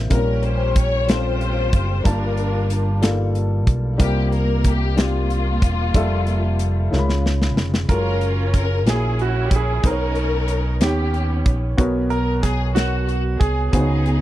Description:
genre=slow gospel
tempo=62 BPM (dotted quarters)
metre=6/8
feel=straight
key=unclear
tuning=A4 = 443 Hz
part: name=dark upright piano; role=accompaniment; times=0.0-14.2 s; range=G2 to Cb6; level=-24 LUFS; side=left 1 dB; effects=none
part: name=fingered electric bass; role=bass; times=0.0-14.2 s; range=E1 to D#2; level=-21 LUFS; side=equal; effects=none
part: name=warm studio string section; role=melody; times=0.1-14.2 s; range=Bb3 to Db5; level=-26 LUFS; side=left 3 dB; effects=none
part: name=modern studio drum kit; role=drums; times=0.1-14.2 s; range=hi-hat, kick drum, snare drum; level=-18 LUFS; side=equal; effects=none
part: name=clear concert grand piano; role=melody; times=7.9-14.2 s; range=F#4 to A#4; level=-27 LUFS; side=right 6 dB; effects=tape echo
room=small room ambience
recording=dry, close 1970s-style studio recording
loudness=-17 LUFS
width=side -14 dB against mid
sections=0.0-7.9 A section; 7.9-14.2 B section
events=drum fill 6.9-7.9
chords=0.1 Bbm6; 2.1 Gm9; 4.0 C7sus4; 5.9 Fmaj9; 6.9 Db7; 7.9 F#maj9; 8.9 F#7/A#; 9.8 Bmaj9; 10.8 D#7b13; 11.8 G#m11/B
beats=| 0.11 1.08 | 2.05 3.02 | 4.00 4.97 | 5.94 6.91 | 7.89 8.86 | 9.83 10.81 | 11.78 12.76 | 13.73

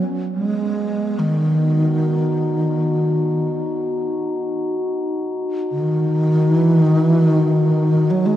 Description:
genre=world meditative, free-time meditation music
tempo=free time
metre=none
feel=none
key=unclear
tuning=A4 = 440 Hz
part: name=breathy mellow bass flute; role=melody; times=0.0-8.4 s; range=D#3 to G#3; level=-16 LUFS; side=equal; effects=ping-pong delay
part: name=glass harmonica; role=texture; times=0.0-8.4 s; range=B3 to F#4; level=-23 LUFS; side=left 2 dB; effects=stereo widening
room=wet church reverb, RT60 3.2 s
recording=worn, warbling old tape, cassette tape, warbly pitch drift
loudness=-16 LUFS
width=side -12 dB against mid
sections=0.0-8.4 A section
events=none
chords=none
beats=free time

